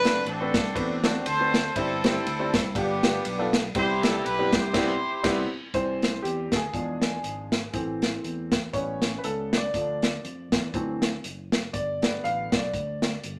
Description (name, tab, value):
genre	uptempo gospel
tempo	120 BPM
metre	4/4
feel	swing 57% on 8ths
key	C major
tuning	A4 = 440 Hz
part	clear horn section	melody	0.0-5.5 s	B3 to C5	-29 LUFS	equal	none
part	clear upright piano	accompaniment	0.0-13.4 s	G2 to F5	-32 LUFS	equal	none
part	fingered electric bass	bass	0.0-13.4 s	F#1 to F2	-37 LUFS	equal	none
part	natural country drum kit	drums	0.0-13.4 s	crash cymbal, hi-hat, kick drum, ride cymbal, snare drum	-29 LUFS	equal	none
room	wet small room ambience, RT60 0.5 s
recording	none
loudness	-26 LUFS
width	mono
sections	0.0-5.7 A section; 5.7-13.4 B section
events	band accent 4.7-5.7; upright piano solo 5.7-13.4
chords	0.0 D7/F#; 1.8 C/G; 2.8 G7; 3.8 Cmaj7; 5.7 C; 6.7 E7b9; 7.7 Am; 8.7 A7; 9.7 Dm; 10.7 D9; 11.7 G